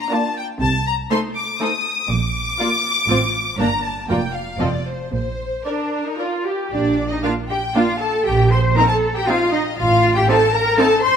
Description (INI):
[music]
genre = quick classical-period movement for string orchestra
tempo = 119 BPM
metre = 3/4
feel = rubato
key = Bb major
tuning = A4 = 439 Hz
[part]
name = rich symphonic violin section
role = melody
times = 0.0-10.9 s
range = Bb4 to Eb6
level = -22 LUFS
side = left 3 dB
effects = none
[part]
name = rich studio violin section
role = second line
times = 0.1-11.2 s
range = F4 to C6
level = -22 LUFS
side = left 4 dB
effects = none
[part]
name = rich symphonic viola section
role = accompaniment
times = 0.1-10.9 s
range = A3 to G4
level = -23 LUFS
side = right 1 dB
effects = none
[part]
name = clear symphonic double bass section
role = bass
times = 0.6-10.2 s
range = F1 to C2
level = -23 LUFS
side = right 3 dB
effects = none
[part]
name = rich symphonic cello section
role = bass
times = 0.6-11.2 s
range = F2 to C5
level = -20 LUFS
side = right 1 dB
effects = none
[sound]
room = moderate scoring stage reverb, RT60 1.7 s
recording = none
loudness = -16 LUFS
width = side -8 dB against mid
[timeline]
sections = 0.0-6.7 A section; 6.7-11.2 B section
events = none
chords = 0.0 Bb; 0.6 Adim/C; 2.1 Bb; 3.1 N.C.; 3.6 Gm; 4.1 N.C.; 5.1 Bb; 8.3 Cm7/Bb; 9.8 F/A